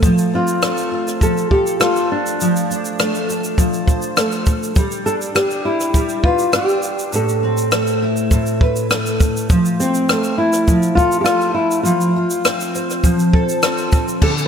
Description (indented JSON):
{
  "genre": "acoustic pop",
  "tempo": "101 BPM",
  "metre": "4/4",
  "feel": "straight",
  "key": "unclear",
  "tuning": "A4 = 442 Hz",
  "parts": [
    { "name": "fingerpicked steel-string acoustic guitar", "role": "accompaniment", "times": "0.0-14.5 s", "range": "A2 to C5", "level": "-19 LUFS", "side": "equal", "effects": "double-tracked left and right" },
    { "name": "compact cocktail drum kit", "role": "drums", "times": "0.0-14.5 s", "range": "crash cymbal, kick drum, rim click, shaker", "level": "-18 LUFS", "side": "equal", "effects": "none" },
    { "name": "nylon-string guitar", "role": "melody", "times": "0.3-14.3 s", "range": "C4 to A4", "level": "-18 LUFS", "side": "left 1 dB", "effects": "slapback echo, digital delay" }
  ],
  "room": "moderate lush hall reverb, RT60 2.5 s",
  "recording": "big arena sound",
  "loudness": "-14 LUFS",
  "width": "side -7 dB against mid",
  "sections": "0.0-14.2 A section",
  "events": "none",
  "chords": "0.0 F; 2.4 Dm7/F; 4.8 G; 7.1 Amadd9; 9.5 F"
}